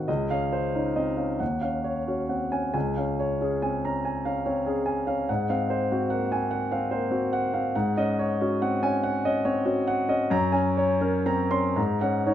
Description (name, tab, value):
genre	classical, impressionist solo piano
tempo	39-50 BPM (dotted quarters)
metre	6/8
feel	rubato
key	Db major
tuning	A4 = 441 Hz
part	warm concert grand piano	solo	0.0-12.3 s	Db2 to C6	-24 LUFS	equal	none
room	light reverb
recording	close, detailed microphones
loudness	-24 LUFS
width	side -11 dB against mid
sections	0.1-12.3 A section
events	none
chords	0.1 Dbmaj9; 1.4 Ebm9; 2.7 Db6; 5.3 Ab13; 7.7 Ebm7/Ab; 10.3 Gbadd9; 11.8 Ab9sus4